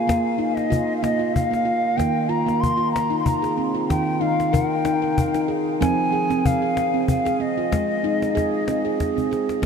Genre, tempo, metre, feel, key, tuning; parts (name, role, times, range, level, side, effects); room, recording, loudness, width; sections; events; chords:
world meditative, meditative tuned percussion; 94 BPM; 3/4; swing 54% on 16ths; Ab major; A4 = 440 Hz
bansuri; melody; 0.0-9.7 s; Eb5 to C6; -24 LUFS; left 2 dB; analog delay
handpan; arpeggios; 0.0-9.7 s; Eb3 to Bb4; -22 LUFS; right 2 dB
cajon; percussion; 0.1-9.7 s; -26 LUFS; left 2 dB
wet huge ambient reverb, RT60 8.1 s; dreamy mix soaked in reverb; -19 LUFS; side -6 dB against mid
0.0-9.6 A section
drum fill 9.1-9.6
0.0 Bb5; 2.0 Eb; 5.8 Fm; 7.7 Ab